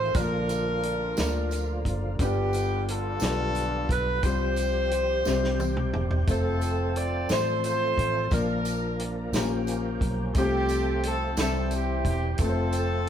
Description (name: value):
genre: slow gospel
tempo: 59 BPM (dotted quarters)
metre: 6/8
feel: straight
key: F major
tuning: A4 = 440 Hz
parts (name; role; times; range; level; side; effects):
- warm horn section; melody; 0.0-13.1 s; B3 to D5; -28 LUFS; equal; none
- warm grand piano; accompaniment; 0.0-13.1 s; G2 to E5; -32 LUFS; left 5 dB; none
- overdriven tonewheel organ; sustained chords; 0.0-13.1 s; C3 to Bb4; -35 LUFS; right 3 dB; slow rotary speaker, chorus vibrato
- vintage muted fingered electric bass; bass; 0.0-13.1 s; E1 to D2; -29 LUFS; equal; none
- warm soul drum kit; drums; 0.1-12.9 s; hi-hat, kick drum, snare drum, toms; -30 LUFS; equal; none
- tambourine; percussion; 0.2-13.0 s; none; -42 LUFS; right 4 dB; none
room: moderate stone room reverb, RT60 1.4 s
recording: band playing live in one room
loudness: -24 LUFS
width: side -9 dB against mid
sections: 0.0-13.1 A section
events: drum fill 5.2-6.3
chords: 0.1 Bb; 2.2 G7; 4.2 Csus4; 5.2 C; 6.3 F; 8.3 Bb; 9.3 Bbm6; 10.4 F/C; 11.4 C; 12.4 F